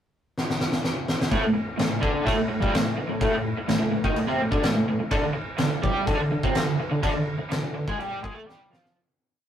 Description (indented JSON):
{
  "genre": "garage rock duo or trio",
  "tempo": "126 BPM",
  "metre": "4/4",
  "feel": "straight",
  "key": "unclear",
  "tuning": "A4 = 440 Hz",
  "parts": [
    { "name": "oversized low-tuned drum kit", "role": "drums", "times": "0.4-9.0 s", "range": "crash cymbal, kick drum, snare drum", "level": "-26 LUFS", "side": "equal", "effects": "none" },
    { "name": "raw garage guitar", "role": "riff", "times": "1.3-8.9 s", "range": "G2 to A4", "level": "-24 LUFS", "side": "equal", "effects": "overdrive, harmonic tremolo" }
  ],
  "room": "wet booth ambience, RT60 0.3 s",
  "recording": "rough rehearsal-room recording, tube saturation",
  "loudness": "-22 LUFS",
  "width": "side -9 dB against mid",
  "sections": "0.0-1.3 pickup bar; 1.3-9.0 riff",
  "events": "drum fill 0.4-1.3, 8.5-9.0; fade-out 7.0-9.0",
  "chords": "0.0 N.C.; 5.1 D5",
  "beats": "0.37 0.85 | 1.32 1.79 2.27 2.74 | 3.22 3.69 4.17 4.65 | 5.12 5.60 6.08 6.56 | 7.04 7.52 8.00 8.48"
}